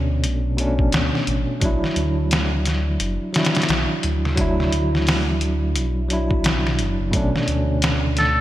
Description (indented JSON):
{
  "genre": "trip hop",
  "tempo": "87 BPM",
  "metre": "4/4",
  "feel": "swing 60% on 16ths",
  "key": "unclear",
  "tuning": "A4 = 440 Hz",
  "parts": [
    { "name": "bell-like tine electric piano", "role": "accompaniment", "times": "0.0-8.4 s", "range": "B2 to E4", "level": "-23 LUFS", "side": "right 1 dB", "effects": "tremolo, tape echo" },
    { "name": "dark detuned saw bass", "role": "bass", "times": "0.0-8.4 s", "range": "F#1 to D2", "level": "-22 LUFS", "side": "equal", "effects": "none" },
    { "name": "trip hop sampler-style drum kit", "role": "drums", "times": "0.2-8.4 s", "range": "hi-hat, kick drum, snare drum", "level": "-22 LUFS", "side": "equal", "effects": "gated reverb" },
    { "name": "trumpet with metal mute", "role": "melody", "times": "8.2-8.4 s", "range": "A4", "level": "-17 LUFS", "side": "equal", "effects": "vintage 12-bit sampler grit" }
  ],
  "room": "moderate lush hall reverb, RT60 2.3 s",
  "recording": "bright 1980s-style digital production",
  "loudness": "-18 LUFS",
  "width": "side -14 dB against mid",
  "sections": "0.0-8.4 A section",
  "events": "none",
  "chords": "0.0 Bm9; 1.6 Dadd9; 7.1 Bm9"
}